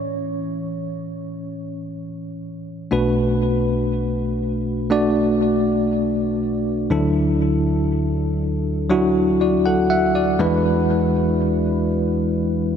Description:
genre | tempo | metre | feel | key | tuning
pop | 60 BPM | 4/4 | straight | unclear | A4 = 441 Hz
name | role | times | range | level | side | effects
bell-like tine electric piano | solo | 0.0-12.8 s | B1 to F#5 | -18 LUFS | equal | fast stereo tremolo, ping-pong delay
room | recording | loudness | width
wet huge ambient reverb, RT60 4.7 s | dreamy mix soaked in reverb | -18 LUFS | side -8 dB against mid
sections
0.0-2.9 A section; 2.9-12.8 B section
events
tine electric piano solo 0.0-2.9; tine electric piano fill 9.4-10.9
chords
0.0 A; 2.9 Bm7; 6.9 Dadd9; 10.4 E7

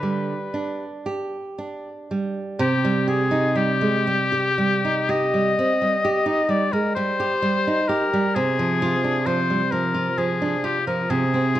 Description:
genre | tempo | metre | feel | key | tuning
romantic duo for oboe and classical guitar | 38-44 BPM (dotted quarters) | 12/8 | rubato | C minor | A4 = 440 Hz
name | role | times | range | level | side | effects
clear oboe | melody | 0.0-11.6 s | G4 to Eb5 | -23 LUFS | left 4 dB | none
nylon-string guitar | accompaniment | 0.0-11.6 s | C3 to G4 | -22 LUFS | right 2 dB | none
room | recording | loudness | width
moderate recital hall reverb, RT60 1.7 s | dark, warm production | -19 LUFS | side -12 dB against mid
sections
0.0-2.6 A section; 2.6-11.6 B section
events
none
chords
0.0 G; 2.6 Cm; 8.3 Ddim/C

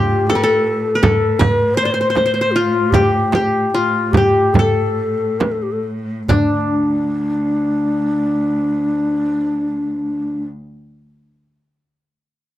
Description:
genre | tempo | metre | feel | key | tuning
Arabic maqam ensemble | 66-82 BPM | 4/4 | straight | A maqam bayati | A4 = 440 Hz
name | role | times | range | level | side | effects
qanun | melody | 0.0-10.4 s | D4 to C5 | -18 LUFS | left 2 dB | none
breathy mellow low ney | second line | 0.0-10.4 s | D4 to D5 | -19 LUFS | left 2 dB | none
clear cello | drone | 0.0-10.4 s | D2 to A2 | -24 LUFS | equal | stereo widening
darbuka | percussion | 0.1-6.7 s | none | -20 LUFS | right 2 dB | none
frame drum | percussion | 0.3-6.7 s | none | -19 LUFS | right 3 dB | none
room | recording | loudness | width
moderate small room ambience, RT60 0.5 s | none | -15 LUFS | side -13 dB against mid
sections
0.0-6.3 A section; 6.3-9.9 B section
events
slowing down 0.0-6.3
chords
none

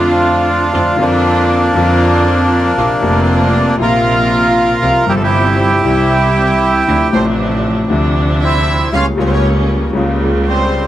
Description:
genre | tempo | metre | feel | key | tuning
tango | 117 BPM | 4/4 | rubato | unclear | A4 = 440 Hz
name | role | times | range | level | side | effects
bandoneon | melody | 0.0-10.9 s | G3 to Bb4 | -13 LUFS | right 1 dB | none
warm concert grand piano | accompaniment | 0.0-10.9 s | F1 to A4 | -17 LUFS | left 2 dB | none
warm chamber string section | stabs | 0.0-10.9 s | Db3 to F4 | -20 LUFS | right 2 dB | none
clear double bass | bass | 0.0-10.9 s | F1 to F2 | -16 LUFS | right 1 dB | none
warm studio violin section | second line | 7.1-10.9 s | C5 to F5 | -20 LUFS | equal | none
room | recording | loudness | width
moderate club ambience, RT60 0.5 s | faint mains hum | -10 LUFS | side -13 dB against mid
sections
0.0-10.9 A section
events
none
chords
0.0 F6; 2.8 Bbsus2; 4.8 Csus4; 5.8 C; 6.9 Dm7; 8.9 Bbm6/Db

